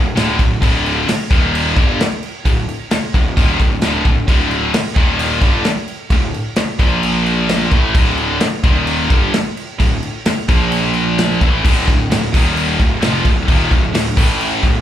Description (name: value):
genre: heavy metal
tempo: 130 BPM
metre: 4/4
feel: straight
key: D phrygian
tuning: A4 = 438 Hz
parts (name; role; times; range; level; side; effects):
- heavy high-gain guitar; riff; 0.0-14.8 s; D2 to Bb3; -25 LUFS; equal; distortion, slapback echo
- scooped high-gain guitar; riff; 0.0-14.8 s; D2 to Bb3; -20 LUFS; left 11 dB; distortion, slapback echo
- scooped high-gain guitar; riff; 0.0-14.8 s; D2 to Bb3; -22 LUFS; right 8 dB; distortion, slapback echo
- fuzz picked electric bass; bass; 0.0-14.8 s; D1 to Bb1; -21 LUFS; equal; overdrive
- modern studio drum kit; drums; 0.2-14.7 s; crash cymbal, kick drum, snare drum; -16 LUFS; equal; none
room: studio ambience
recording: live gig heard through the venue's PA, club reverb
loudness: -13 LUFS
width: side -11 dB against mid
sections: 0.0-11.6 A section; 11.6-14.8 B section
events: none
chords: 0.0 D5; 1.3 Eb5; 1.8 D5; 5.0 Eb5; 5.4 D5; 6.8 Bb5; 7.7 D5; 8.6 Eb5; 9.1 D5; 10.5 Bb5; 11.4 A5; 11.6 D5; 12.3 Eb5; 12.8 Dm; 14.2 A5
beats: 0.16 | 0.62 1.08 1.53 1.99 | 2.45 2.91 3.36 3.82 | 4.28 4.74 5.20 5.66 | 6.12 6.58 7.03 7.49 | 7.96 8.41 8.88 9.34 | 9.80 10.26 10.72 11.18 | 11.64 12.10 12.56 13.03 | 13.49 13.95 14.41